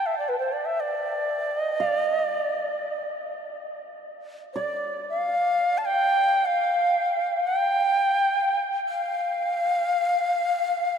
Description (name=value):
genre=world meditative, free-time meditation music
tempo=free time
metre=none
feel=none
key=D minor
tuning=A4 = 439 Hz
part: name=Native American-style cedar flute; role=melody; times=0.0-11.0 s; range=B4 to A5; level=-23 LUFS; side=equal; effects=diffuse ambient delay
part: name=hammered dulcimer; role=texture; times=0.0-11.0 s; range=D5 to F5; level=-34 LUFS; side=right 6 dB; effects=none
room=wet huge ambient reverb, RT60 6.9 s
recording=dark, warm production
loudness=-22 LUFS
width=side -7 dB against mid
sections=0.0-3.8 A section; 3.8-11.0 A section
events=none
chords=none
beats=free time